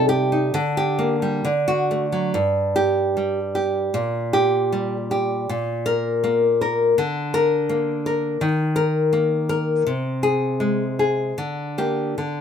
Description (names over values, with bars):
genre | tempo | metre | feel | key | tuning
romantic piece for solo classical guitar | 65-85 BPM | 2/4 | rubato | G minor | A4 = 440 Hz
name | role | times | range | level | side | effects
nylon-string guitar | solo | 0.0-12.4 s | G2 to Bb4 | -19 LUFS | left 1 dB | none
room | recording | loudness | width
light reverb | minimal, uncompressed stereo recording | -19 LUFS | side -8 dB against mid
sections
0.0-2.4 A section; 2.4-12.4 B section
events
none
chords
0.0 Cm; 0.6 Gm/D; 1.5 D; 2.4 N.C.; 3.9 Gm/Bb; 5.5 N.C.; 7.0 Bb/D; 8.4 Eb5; 9.9 Ab/C; 11.4 Gm/D